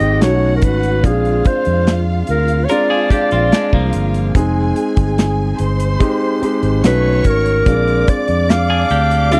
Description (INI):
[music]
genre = lush 1970s-style soul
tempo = 72 BPM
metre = 4/4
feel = straight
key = unclear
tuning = A4 = 440 Hz
[part]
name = breathy clarinet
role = melody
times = 0.0-9.4 s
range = Ab4 to F5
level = -19 LUFS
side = equal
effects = none
[part]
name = rich studio string section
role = second line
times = 0.0-9.4 s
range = F4 to D6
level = -27 LUFS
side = equal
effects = none
[part]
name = warm grand piano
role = accompaniment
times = 0.0-9.4 s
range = Ab3 to Ab4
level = -22 LUFS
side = equal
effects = none
[part]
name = fingered electric bass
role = bass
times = 0.0-9.4 s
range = F1 to F2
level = -19 LUFS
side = equal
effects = none
[part]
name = modern studio drum kit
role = drums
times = 0.0-9.4 s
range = hi-hat, kick drum, snare drum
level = -17 LUFS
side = equal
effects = none
[part]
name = clean electric guitar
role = riff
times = 2.7-9.4 s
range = F3 to Bb4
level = -24 LUFS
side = equal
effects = none
[sound]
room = little or no reverb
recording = dry, close 1970s-style studio recording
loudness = -15 LUFS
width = mono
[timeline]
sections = 0.0-9.4 A section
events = none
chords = 0.2 B9; 1.0 Bb7; 4.3 Fm9; 6.8 B9; 7.7 Bb7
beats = 0.21 | 1.04 1.86 2.69 3.52 | 4.35 5.18 6.00 6.83 | 7.66 8.49 9.32